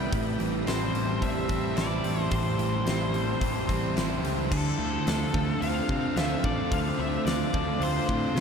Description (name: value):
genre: rock, shoegaze and dream pop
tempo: 109 BPM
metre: 4/4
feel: straight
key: unclear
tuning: A4 = 439 Hz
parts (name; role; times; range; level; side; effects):
- octave-fuzz lead guitar; melody; 0.0-8.4 s; A4 to G5; -34 LUFS; left 3 dB; distortion, ping-pong delay
- dark analog pad; sustained chords; 0.0-8.4 s; D4 to A5; -35 LUFS; left 2 dB; chorus
- twangy electric guitar; arpeggios; 0.0-8.4 s; F3 to A4; -39 LUFS; left 6 dB; wide subtle chorus, ping-pong delay
- overdriven electric guitar; riff; 0.0-8.4 s; A2 to F4; -31 LUFS; right 7 dB; reverse reverb
- thick fuzz guitar; riff; 0.0-8.4 s; A2 to F4; -34 LUFS; left 8 dB; distortion, analog chorus
- picked electric bass; bass; 0.0-8.4 s; A1 to C3; -32 LUFS; equal; none
- huge arena drum kit; drums; 0.1-8.4 s; crash cymbal, hi-hat, kick drum, snare drum; -32 LUFS; equal; none
room: wet huge ambient reverb, RT60 8.3 s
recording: dreamy mix soaked in reverb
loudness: -25 LUFS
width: side -6 dB against mid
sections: 0.0-4.5 A section; 4.5-8.4 B section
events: none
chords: 0.1 Am7; 4.5 Dm7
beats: | 0.12 0.67 1.22 1.77 | 2.31 2.87 3.41 3.96 | 4.51 5.06 5.61 6.16 | 6.71 7.26 7.81 8.36